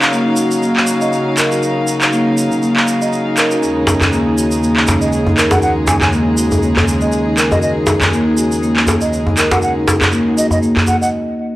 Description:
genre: afro house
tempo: 120 BPM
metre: 4/4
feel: swing 56% on 16ths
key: unclear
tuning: A4 = 440 Hz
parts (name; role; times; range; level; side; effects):
- warm chamber string section; sustained chords; 0.0-11.1 s; Eb2 to F5; -18 LUFS; equal; none
- electronic handclaps; drums; 0.0-10.9 s; none; -17 LUFS; equal; none
- tube shaker; percussion; 0.0-11.1 s; none; -26 LUFS; right 2 dB; none
- marimba with soft mallets; arpeggios; 0.1-11.1 s; Bb3 to Eb5; -16 LUFS; equal; low-pass filter, tape echo
- djembe; percussion; 3.9-11.0 s; none; -17 LUFS; equal; none
- mellow silver concert flute; melody; 5.5-11.1 s; Eb5 to Ab5; -20 LUFS; equal; tape echo
room: light reverb, small room ambience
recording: dry, gritty hardware recording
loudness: -12 LUFS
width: side -16 dB against mid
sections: 0.0-11.6 A section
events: stop 11.1-11.6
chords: 0.0 Ebm9; 3.6 Absus4/Eb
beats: 0.13 0.63 1.13 | 1.63 2.13 2.63 3.13 | 3.63 4.13 4.63 5.13 | 5.63 6.13 6.63 7.13 | 7.63 8.13 8.63 9.13 | 9.63 10.13 10.63

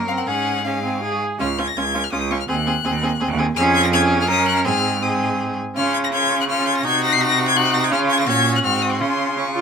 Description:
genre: quick classical-period movement for string quartet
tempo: 165 BPM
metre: 3/4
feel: straight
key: Db major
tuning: A4 = 439 Hz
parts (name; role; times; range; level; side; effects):
- rich violin; second line; 0.0-9.6 s; F4 to Bb4; -23 LUFS; left 3 dB; none
- rich viola; accompaniment; 0.0-9.6 s; C4 to Ab4; -23 LUFS; right 3 dB; none
- bright cello; bass; 0.0-9.6 s; Db2 to Db3; -23 LUFS; right 4 dB; none
- bright violin; melody; 0.1-9.6 s; F5 to C7; -22 LUFS; left 6 dB; none
room: light reverb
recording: minimal, uncompressed stereo recording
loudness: -17 LUFS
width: side -6 dB against mid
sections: 0.0-1.4 A section; 1.4-9.6 B section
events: none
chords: 0.3 Db/Ab; 1.0 Fm/Ab; 1.4 Db; 2.5 Ab7/Eb; 3.6 Db/F; 4.3 Ebm7/Gb; 4.7 Ab; 5.8 Db; 6.8 Cm7b5; 7.9 Db; 8.3 Gb/Bb; 8.6 Ab7; 9.0 Db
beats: | 0.27 0.65 1.03 | 1.40 1.77 2.13 | 2.49 2.85 3.21 | 3.57 3.92 4.29 | 4.65 5.02 5.39 | 5.76 6.13 6.49 | 6.85 7.20 7.56 | 7.91 8.27 8.63 | 9.00 9.38

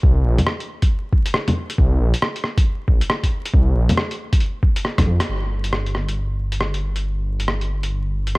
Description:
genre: future garage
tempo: 137 BPM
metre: 4/4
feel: swing 62% on 16ths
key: unclear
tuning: A4 = 440 Hz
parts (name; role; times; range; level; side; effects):
- dark detuned saw bass; bass; 0.0-8.4 s; G1 to F2; -20 LUFS; equal; tube saturation, sidechain pumping
- electronic kick drum; drums; 0.0-5.1 s; none; -17 LUFS; equal; studio ambience
- lo-fi sampler-style drum kit; drums; 0.4-8.4 s; bongos, hi-hat, rim click; -22 LUFS; equal; studio ambience
room: little or no reverb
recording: vinyl crackle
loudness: -18 LUFS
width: side -25 dB against mid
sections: 0.0-5.3 A section; 5.3-8.4 B section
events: drum fill 4.9-5.3; band accent 5.2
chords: none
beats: | 0.03 0.47 0.91 1.35 | 1.79 2.22 2.66 3.10 | 3.54 3.98 4.41 4.85 | 5.29 5.73 6.17 6.60 | 7.04 7.48 7.92 8.36

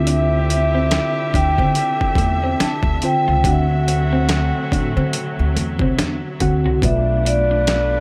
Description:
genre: R&B, neo-soul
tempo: 71 BPM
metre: 4/4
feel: swing 59% on 16ths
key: unclear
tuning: A4 = 440 Hz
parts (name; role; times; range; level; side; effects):
- electric guitar through a small old amp; second line; 0.0-7.7 s; A3 to F#4; -29 LUFS; equal; none
- mellow tine electric piano; accompaniment; 0.0-8.0 s; B2 to F#5; -25 LUFS; equal; none
- rich studio string section; sustained chords; 0.0-8.0 s; B2 to E5; -32 LUFS; equal; none
- mellow horn section; stabs; 0.0-8.0 s; A3 to B4; -30 LUFS; equal; none
- upright bass; bass; 0.0-8.0 s; B1 to D3; -23 LUFS; equal; none
- vibraphone with medium mallets; melody; 0.1-8.0 s; D5 to A5; -23 LUFS; equal; none
- boom bap sampler-style drum kit; drums; 0.1-7.9 s; finger snaps, hi-hat, kick drum, snare drum; -24 LUFS; equal; overdrive
room: little or no reverb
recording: none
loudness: -18 LUFS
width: mono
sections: 0.0-8.0 A section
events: none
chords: 0.0 Dm9; 3.4 D9; 6.8 Bm7b5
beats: | 0.06 0.91 1.75 2.60 | 3.44 4.29 5.13 5.98 | 6.82 7.67

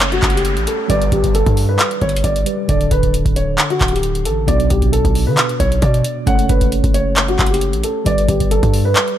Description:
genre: hip hop, trap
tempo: 134 BPM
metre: 4/4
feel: half-time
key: F# phrygian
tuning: A4 = 440 Hz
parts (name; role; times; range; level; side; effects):
- dark concert grand piano; melody; 0.0-9.2 s; F#4 to F#5; -20 LUFS; equal; low-pass filter, ping-pong delay
- mellow tine electric piano; accompaniment; 0.0-9.2 s; B2 to D5; -22 LUFS; right 1 dB; medium stereo tremolo, low-pass filter
- hard-hitting 808-style bass; bass; 0.0-8.9 s; D1 to D3; -18 LUFS; equal; none
- booming analog drum machine; drums; 0.0-9.2 s; handclaps, hi-hat, kick drum; -17 LUFS; equal; none
- downlifter; sound effects; 0.0-2.7 s; none; -28 LUFS; equal; none
room: little or no reverb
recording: none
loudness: -13 LUFS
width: side -11 dB against mid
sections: 0.0-9.2 A section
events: none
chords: 0.0 F#m; 0.9 G; 2.7 D5; 4.5 Bm; 6.3 F#m; 8.1 G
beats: 0.00 0.45 | 0.90 1.34 1.79 2.24 | 2.69 3.14 3.58 4.03 | 4.48 4.93 5.38 5.82 | 6.27 6.72 7.17 7.61 | 8.06 8.51 8.96

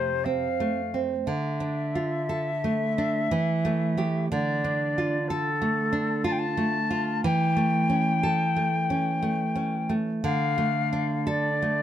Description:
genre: romantic duo for flute and classical guitar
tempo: 60 BPM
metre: 3/4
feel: uneven beats, rubato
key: unclear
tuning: A4 = 440 Hz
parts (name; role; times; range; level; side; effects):
- concert flute; melody; 0.0-11.8 s; A4 to A5; -28 LUFS; left 4 dB; none
- nylon-string guitar; accompaniment; 0.0-11.8 s; F2 to A4; -26 LUFS; right 2 dB; none
room: light reverb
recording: close, detailed microphones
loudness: -24 LUFS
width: side -10 dB against mid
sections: 0.0-11.8 A section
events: none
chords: 0.0 F; 1.3 Dm; 3.3 A5/E; 4.3 Dm; 7.2 A7/E; 10.2 Dm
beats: 0.25 | 1.27 2.29 3.32 | 4.30 5.29 6.26 | 7.24 8.24 9.24 | 10.24 11.27

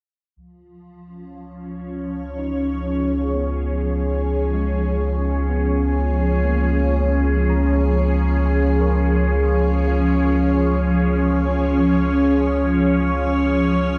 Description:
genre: ambient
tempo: free time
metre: none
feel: none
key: Db mixolydian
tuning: A4 = 441 Hz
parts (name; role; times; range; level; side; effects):
- evolving wavetable pad; sustained chords; 1.1-14.0 s; F3 to Db5; -22 LUFS; equal; ensemble chorus, built-in reverb, phaser
- round analog bass; bass; 0.4-14.0 s; Db2; -23 LUFS; equal; none
- tine electric piano; arpeggios; 2.4-14.0 s; Ab3 to Bb5; -35 LUFS; equal; diffuse ambient delay
room: wet concert hall reverb, RT60 2.4 s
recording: dark, warm production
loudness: -19 LUFS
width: mono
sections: 0.4-14.0 A section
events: fade-in on tine electric piano 0.4-14.0; filter sweep on ambient pad 0.4-14.0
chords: 0.4 Db7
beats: free time

